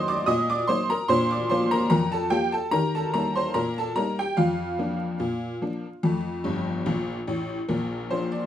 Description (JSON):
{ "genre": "ragtime piano", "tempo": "73 BPM", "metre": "2/4", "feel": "swing 54% on 16ths", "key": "Bb major", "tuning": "A4 = 443 Hz", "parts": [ { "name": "tack piano", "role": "solo", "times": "0.0-8.5 s", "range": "G1 to Eb6", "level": "-23 LUFS", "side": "equal", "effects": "none" } ], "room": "moderate small room reverb, RT60 0.5 s", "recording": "dark, warm production, vinyl crackle", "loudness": "-23 LUFS", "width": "side -10 dB against mid", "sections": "0.0-7.7 A section", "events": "honky-tonk piano fill 6.4-7.7", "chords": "0.0 Ebm; 1.1 Bb; 2.7 Eb; 4.4 Bb/F; 6.0 F; 7.7 Bb" }